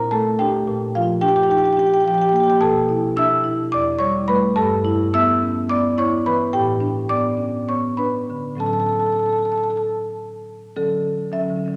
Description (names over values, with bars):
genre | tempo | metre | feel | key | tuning
classical, contemporary piece for solo marimba | 191-220 BPM (eighths) | 7/8 | rubato | unclear | A4 = 440 Hz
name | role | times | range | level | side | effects
marimba with soft mallets | solo | 0.0-11.8 s | E2 to E6 | -20 LUFS | equal | none
room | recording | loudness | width
wet concert hall reverb, RT60 2.2 s | none | -19 LUFS | mono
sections
0.0-10.8 A section; 10.8-11.8 B section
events
none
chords
0.0 Gmadd9/Bb; 0.7 Ebmaj9/Bb; 2.6 Bm7; 3.7 Em7; 4.6 G69; 6.5 A9sus4; 8.6 A6; 10.8 Dmaj9